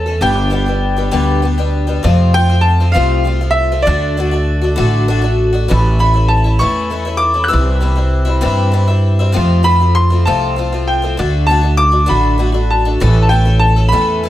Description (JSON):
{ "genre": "folk rock and heartland rock", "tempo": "66 BPM (dotted quarters)", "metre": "6/8", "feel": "straight", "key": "unclear", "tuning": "A4 = 439 Hz", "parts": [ { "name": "bright baby grand piano", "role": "melody", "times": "0.0-14.3 s", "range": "D5 to F#6", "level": "-17 LUFS", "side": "equal", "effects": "none" }, { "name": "picked twelve-string acoustic guitar", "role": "accompaniment", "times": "0.0-14.3 s", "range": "F2 to A4", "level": "-18 LUFS", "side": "left 3 dB", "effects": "none" }, { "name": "upright bass", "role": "bass", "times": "0.0-14.3 s", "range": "G1 to G2", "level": "-13 LUFS", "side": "equal", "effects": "none" } ], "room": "small room ambience", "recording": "none", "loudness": "-11 LUFS", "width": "side -13 dB against mid", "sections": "0.0-2.1 A section; 2.1-14.3 A section", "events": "none", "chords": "0.2 G; 2.1 F; 3.9 D; 5.7 A; 7.5 C; 9.4 F; 11.2 D; 13.0 A" }